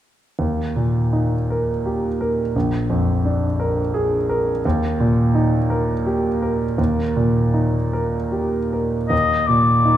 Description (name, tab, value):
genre	classical, romantic duo for oboe and grand piano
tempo	48-58 BPM (dotted quarters)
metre	6/8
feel	rubato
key	Eb major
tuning	A4 = 440 Hz
part	clear baby grand piano	accompaniment	0.4-10.0 s	Bb1 to Bb4	-18 LUFS	right 1 dB	none
part	warm oboe	melody	9.1-10.0 s	D5 to Eb5	-16 LUFS	left 3 dB	none
room	wet recital hall reverb, RT60 1.7 s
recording	dark, warm production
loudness	-17 LUFS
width	side -11 dB against mid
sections	0.4-9.1 A section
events	none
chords	0.4 Eb; 2.5 Bb7; 4.6 Eb; 9.1 Eb5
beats	| 0.38 1.49 | 2.55 3.59 | 4.64 5.69 | 6.78 7.91 | 9.12